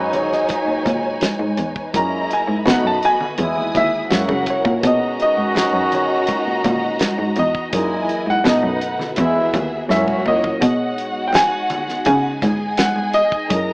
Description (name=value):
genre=lush 1970s-style soul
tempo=83 BPM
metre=4/4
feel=straight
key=B major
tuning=A4 = 440 Hz
part: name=warm baby grand piano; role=melody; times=0.0-13.7 s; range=B4 to A#5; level=-20 LUFS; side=equal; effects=none
part: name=dark studio violin section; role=second line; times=0.0-13.7 s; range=A#3 to D#6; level=-24 LUFS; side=equal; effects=tape echo
part: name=tine electric piano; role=accompaniment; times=0.0-13.7 s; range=B2 to E5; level=-28 LUFS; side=equal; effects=overdrive
part: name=string machine, violins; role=sustained chords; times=0.0-13.7 s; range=E3 to B4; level=-32 LUFS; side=equal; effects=none
part: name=brilliant trombone section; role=stabs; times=0.0-10.3 s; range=G#2 to F#4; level=-22 LUFS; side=equal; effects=none
part: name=rich cello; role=bass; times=0.0-13.7 s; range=D#2 to C#3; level=-21 LUFS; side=equal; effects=none
part: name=damped 70s drum kit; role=drums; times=0.1-13.7 s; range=hi-hat, kick drum, snare drum, toms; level=-22 LUFS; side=equal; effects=none
part: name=congas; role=percussion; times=0.1-13.7 s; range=none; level=-28 LUFS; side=equal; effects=none
room=moderate small room ambience, RT60 0.5 s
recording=rough home demo mix, AM radio sound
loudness=-16 LUFS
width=side -30 dB against mid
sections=0.0-10.6 A section; 10.6-13.7 B section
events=grand piano solo 0.0-10.6; drum fill 9.9-10.6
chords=0.0 B69; 1.9 F#13; 2.7 B7; 3.4 Emaj7; 4.1 F#7; 4.8 B69; 7.7 F#13; 8.5 B7; 9.2 Emaj7; 9.9 F#7; 10.6 B69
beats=0.50 1.22 | 1.94 2.67 3.39 4.12 | 4.84 5.56 6.28 7.01 | 7.73 8.45 9.17 9.90 | 10.62 11.34 12.06 12.78 | 13.51